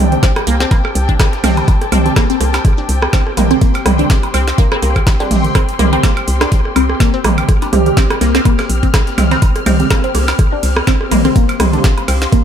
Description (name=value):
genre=minimal techno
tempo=124 BPM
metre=4/4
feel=swing 56% on 16ths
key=unclear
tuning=A4 = 441 Hz
part: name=filtered dub chord stab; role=stabs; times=0.0-11.8 s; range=G3 to G4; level=-22 LUFS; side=right 3 dB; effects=phaser, lush chorus, tape echo
part: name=hollow knocking FM bass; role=bass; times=0.0-12.3 s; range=Bb1 to C2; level=-15 LUFS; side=equal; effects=sidechain pumping
part: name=muted studio string section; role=texture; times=0.0-12.4 s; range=C4 to F6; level=-22 LUFS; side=left 2 dB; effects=sidechain pumping
part: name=garage drum kit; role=drums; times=0.1-12.4 s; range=hi-hat, ride cymbal, snare drum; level=-23 LUFS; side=equal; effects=overdrive
part: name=resonant blip pluck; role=riff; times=0.2-12.4 s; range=Bb3 to D4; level=-19 LUFS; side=left 1 dB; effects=phaser, sidechain pumping, ping-pong delay
part: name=dusty soul sampler-style drum kit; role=drums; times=0.2-12.4 s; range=hi-hat, snare drum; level=-34 LUFS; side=right 1 dB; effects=none
part: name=electronic kick drum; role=drums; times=0.2-12.4 s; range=none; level=-12 LUFS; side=equal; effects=overdrive
part: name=organic electronic drum kit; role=percussion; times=0.2-12.2 s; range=rim click, toms, woodblock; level=-18 LUFS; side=right 2 dB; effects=overdrive, tape echo
part: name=flickering grainy texture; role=texture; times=10.0-12.4 s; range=C4 to C5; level=-29 LUFS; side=left 2 dB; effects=none
room=light reverb, digital ambience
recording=none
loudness=-11 LUFS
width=side -8 dB against mid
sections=0.0-12.4 A section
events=none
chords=0.0 C5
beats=0.23 0.71 1.20 | 1.68 2.16 2.65 3.13 | 3.62 4.10 4.58 5.07 | 5.55 6.03 6.52 7.00 | 7.49 7.97 8.45 8.94 | 9.42 9.90 10.39 10.87 | 11.36 11.84 12.32